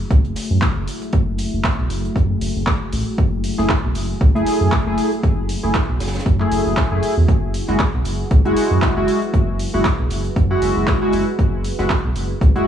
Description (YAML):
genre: deep house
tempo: 117 BPM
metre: 4/4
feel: swing 56% on 16ths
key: F# minor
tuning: A4 = 440 Hz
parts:
  - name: deep dark ambient pad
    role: sustained chords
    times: 0.0-12.7 s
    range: A3 to B4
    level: -28 LUFS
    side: left 1 dB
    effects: chorus, built-in reverb, vintage 12-bit sampler grit, sidechain pumping
  - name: round analog bass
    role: bass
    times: 0.0-12.6 s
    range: F#1 to F#2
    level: -20 LUFS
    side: equal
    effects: tube saturation, sidechain pumping
  - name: electronic kick drum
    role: drums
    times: 0.1-12.5 s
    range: none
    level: -18 LUFS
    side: equal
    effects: overdrive
  - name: tight funk drum kit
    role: drums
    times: 0.1-12.7 s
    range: hi-hat, snare drum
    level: -36 LUFS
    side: right 2 dB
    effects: high-pass filter on hats, high-pass filter on snare, high-pass filter on room
  - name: deep house drum kit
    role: drums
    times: 0.4-12.3 s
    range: handclaps, hi-hat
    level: -26 LUFS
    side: right 1 dB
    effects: overdrive
  - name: chorused polysynth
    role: stabs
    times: 3.6-12.7 s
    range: G#3 to G#4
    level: -20 LUFS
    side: equal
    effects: sidechain pumping, tape echo
room: little or no reverb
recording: cassette tape, small room ambience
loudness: -16 LUFS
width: side -9 dB against mid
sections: 0.0-12.7 A section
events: none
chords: 0.0 F#m9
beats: 0.11 0.62 | 1.13 1.65 2.16 2.67 | 3.18 3.70 4.21 4.72 | 5.23 5.75 6.26 6.77 | 7.29 7.80 8.31 8.82 | 9.34 9.85 10.36 10.88 | 11.39 11.90 12.41